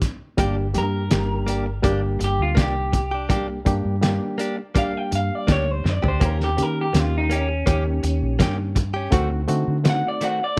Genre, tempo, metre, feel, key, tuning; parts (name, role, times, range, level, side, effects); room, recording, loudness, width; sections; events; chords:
straight-eighth soul blues; 82 BPM; 4/4; straight; G harmonic minor; A4 = 440 Hz
barky reed electric piano; accompaniment; 0.0-10.6 s; G3 to G4; -29 LUFS; equal; overdrive, spring reverb
cloth-damped thuddy drum kit; drums; 0.0-10.4 s; hi-hat, kick drum, snare drum, toms; -24 LUFS; equal
direct-recorded clean electric guitar; stabs; 0.4-10.4 s; Eb3 to G4; -31 LUFS; equal; plate reverb
vintage muted fingered electric bass; bass; 0.4-10.0 s; G1 to Eb3; -26 LUFS; equal
electric guitar through a small old amp; melody; 0.8-10.6 s; Db4 to G5; -29 LUFS; equal
light reverb; -22 LUFS; mono
0.0-10.6 A section
clean electric guitar solo 0.0-10.6; drum fill 5.9-6.2
0.4 Gm; 6.2 Eb7; 9.1 D7b9